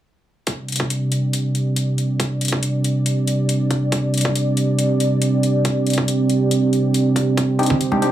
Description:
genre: deep dubstep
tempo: 139 BPM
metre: 4/4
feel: half-time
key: unclear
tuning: A4 = 441 Hz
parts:
  - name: dark analog pad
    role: sustained chords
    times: 0.5-8.1 s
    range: C4 to D5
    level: -18 LUFS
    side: right 1 dB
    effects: chorus
  - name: electronic hi-hat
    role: drums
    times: 0.5-8.1 s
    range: none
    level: -26 LUFS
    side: left 4 dB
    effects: none
  - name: electronic kick drum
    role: drums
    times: 0.5-7.8 s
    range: none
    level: -23 LUFS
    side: equal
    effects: high-pass filter on kick
  - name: percussive organ stab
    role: stabs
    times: 7.6-8.1 s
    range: C4 to G4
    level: -18 LUFS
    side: left 2 dB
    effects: chorus, vintage 12-bit sampler grit, dub echo
  - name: congas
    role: percussion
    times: 7.7-8.0 s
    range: none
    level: -20 LUFS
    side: right 2 dB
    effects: none
room: light reverb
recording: small room ambience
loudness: -17 LUFS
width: side -12 dB against mid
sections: 0.5-8.1 A section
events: none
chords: 0.5 Csus2

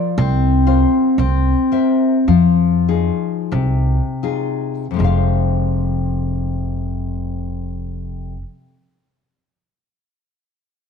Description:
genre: fado-style ballad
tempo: 38-61 BPM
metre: 2/4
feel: rubato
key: F minor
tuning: A4 = 440 Hz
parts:
  - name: nylon-string guitar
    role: accompaniment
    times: 0.0-8.5 s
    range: F2 to F5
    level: -17 LUFS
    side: left 4 dB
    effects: none
  - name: upright bass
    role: bass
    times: 0.2-8.4 s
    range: F1 to F2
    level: -18 LUFS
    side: right 1 dB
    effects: none
room: wet echo chamber reverb, RT60 1.4 s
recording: 1960s-style stereo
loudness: -15 LUFS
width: side -6 dB against mid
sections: 0.0-5.0 A section; 5.0-10.9 B section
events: slowing down 0.2-5.0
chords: 0.2 C7sus4; 1.2 C7; 2.3 Fm7; 5.0 Fm

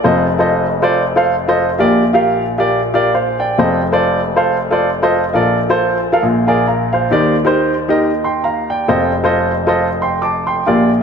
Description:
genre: gospel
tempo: 136 BPM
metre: 4/4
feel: swing 57% on 8ths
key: unclear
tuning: A4 = 440 Hz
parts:
  - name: warm upright piano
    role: solo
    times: 0.0-11.0 s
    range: F1 to D6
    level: -12 LUFS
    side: equal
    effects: none
room: wet plate reverb, RT60 2.4 s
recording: dreamy mix soaked in reverb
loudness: -12 LUFS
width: side -6 dB against mid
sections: 0.0-11.0 A section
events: none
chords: 0.0 F7; 1.8 Bb6; 3.6 F7; 5.3 Bbmaj7; 6.2 Bb7; 7.1 Ebmaj7; 8.9 F7

